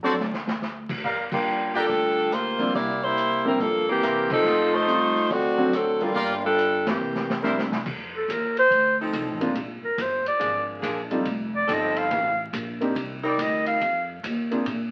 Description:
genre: jazz, big band swing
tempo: 141 BPM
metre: 4/4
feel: swing 65% on 8ths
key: F mixolydian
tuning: A4 = 440 Hz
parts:
  - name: clear concert grand piano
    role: accompaniment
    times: 0.0-14.7 s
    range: Gb3 to A4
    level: -29 LUFS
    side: equal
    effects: none
  - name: clear trumpet section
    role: stabs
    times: 0.0-7.6 s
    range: E4 to G5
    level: -30 LUFS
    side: equal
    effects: none
  - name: upright bass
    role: bass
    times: 0.0-14.9 s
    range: F1 to C3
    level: -37 LUFS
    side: equal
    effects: none
  - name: vintage drum kit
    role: drums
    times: 0.1-14.8 s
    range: crash cymbal, hi-hat, kick drum, ride cymbal, rim click, snare drum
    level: -36 LUFS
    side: equal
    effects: none
  - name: mellow saxophone section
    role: melody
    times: 1.3-7.4 s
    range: E3 to D5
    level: -24 LUFS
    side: equal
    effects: none
  - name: warm clarinet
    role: melody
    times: 8.2-14.1 s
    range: A4 to F5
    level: -25 LUFS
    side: equal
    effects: none
  - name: warm saxophone section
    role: sustained chords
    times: 9.0-13.8 s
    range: F3 to Bb4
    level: -31 LUFS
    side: equal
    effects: none
room: wet studio reverb, RT60 0.8 s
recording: very old 78 rpm record, vinyl crackle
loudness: -24 LUFS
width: mono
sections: 0.0-7.9 A section; 7.9-14.9 B section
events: drum fill 0.2-0.6, 7.0-7.9; band accent 1.2, 4.2, 6.8; clarinet solo 7.9-14.9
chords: 0.2 N.C.; 1.0 Gm7; 2.7 C7; 4.4 F7; 5.3 D7; 6.2 Gm7; 7.0 C7; 7.9 F7; 9.6 Bb7; 11.3 F7; 13.0 Cm7; 13.8 F5

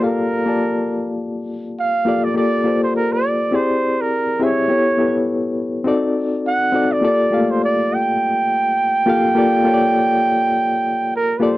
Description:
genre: soul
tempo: 103 BPM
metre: 4/4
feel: swing 54% on 16ths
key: G minor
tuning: A4 = 438 Hz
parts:
  - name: warm flugelhorn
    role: melody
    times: 0.0-11.6 s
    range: Bb4 to G5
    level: -18 LUFS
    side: right 2 dB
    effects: none
  - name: reed electric piano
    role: accompaniment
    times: 0.0-11.6 s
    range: A3 to A5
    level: -18 LUFS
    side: left 2 dB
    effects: fast tremolo
room: little or no reverb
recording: dry, close 1970s-style studio recording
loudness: -15 LUFS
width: side -16 dB against mid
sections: 0.0-2.4 A section; 2.4-11.6 B section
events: none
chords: 0.0 Gm7; 3.5 E7alt; 4.7 A7; 5.9 D7b9; 7.0 Gm7

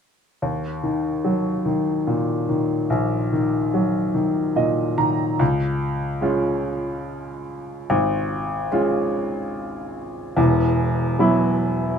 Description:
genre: folk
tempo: 72 BPM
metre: 3/4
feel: straight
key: unclear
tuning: A4 = 440 Hz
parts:
  - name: clear upright piano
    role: solo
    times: 0.4-12.0 s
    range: E1 to Bb5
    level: -20 LUFS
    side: equal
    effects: none
room: light reverb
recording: minimal, uncompressed stereo recording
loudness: -19 LUFS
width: side -7 dB against mid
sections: 0.4-5.4 A section; 5.4-12.0 B section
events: none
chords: 0.4 Ebm; 5.4 Db; 10.4 Esus2

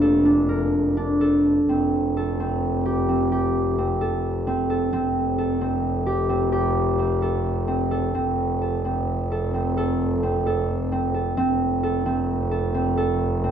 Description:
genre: contemporary instrumental, chamber music in an uneven meter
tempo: 260 BPM (eighths)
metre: 7/8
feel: straight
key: F major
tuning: A4 = 438 Hz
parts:
  - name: concert harp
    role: arpeggios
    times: 0.0-13.5 s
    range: C4 to Bb4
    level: -22 LUFS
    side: equal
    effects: none
  - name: rich double bass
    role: bass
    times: 0.0-13.5 s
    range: F1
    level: -25 LUFS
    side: right 1 dB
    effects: none
room: moderate studio reverb, RT60 0.8 s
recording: dark, warm production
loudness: -20 LUFS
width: side -8 dB against mid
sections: 0.0-1.7 A section; 1.7-13.5 B section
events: none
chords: 0.0 Gmadd9/F; 1.7 Fadd9; 8.2 F

